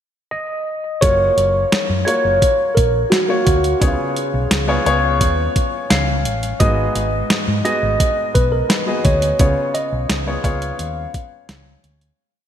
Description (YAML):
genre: 1980s-style pop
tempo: 86 BPM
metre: 4/4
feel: straight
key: F# major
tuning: A4 = 440 Hz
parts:
  - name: mellow tine electric piano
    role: melody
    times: 0.3-11.8 s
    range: F#4 to E#5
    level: -20 LUFS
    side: equal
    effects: phaser, ping-pong delay
  - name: warm baby grand piano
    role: accompaniment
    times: 1.0-12.2 s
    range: G#2 to D#5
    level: -22 LUFS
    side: left 2 dB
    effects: none
  - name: hollow-body short-scale fingered electric bass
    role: bass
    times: 1.0-12.1 s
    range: F#1 to G#2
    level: -21 LUFS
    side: equal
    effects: none
  - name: clean 12-bit digital drum machine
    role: drums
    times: 1.0-12.2 s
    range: hi-hat, kick drum, snare drum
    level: -19 LUFS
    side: equal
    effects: none
room: moderate lush hall reverb, RT60 2.6 s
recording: bright 1980s-style digital production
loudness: -15 LUFS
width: side -9 dB against mid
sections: 0.0-1.0 pickup bar; 1.0-12.2 verse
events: fade-out 9.4-12.2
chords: 0.0 N.C.; 1.0 F#maj7; 3.8 C#7; 6.6 G#m7; 9.4 C#7